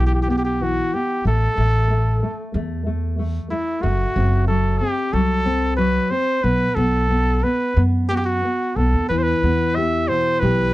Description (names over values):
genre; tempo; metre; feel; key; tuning
fado-style ballad; 92 BPM; 4/4; rubato; E minor; A4 = 440 Hz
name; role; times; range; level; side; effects
warm trumpet; melody; 0.0-10.7 s; E4 to E5; -22 LUFS; right 1 dB; none
nylon-string guitar; accompaniment; 0.0-10.7 s; B2 to G4; -23 LUFS; left 2 dB; none
upright bass; bass; 0.0-10.7 s; F#1 to F#2; -20 LUFS; equal; none
room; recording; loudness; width
light reverb; dark, warm production; -17 LUFS; side -17 dB against mid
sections
0.0-10.7 A section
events
none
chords
0.0 Esus2; 1.2 A5; 3.8 F#dim; 6.4 B5; 9.1 Em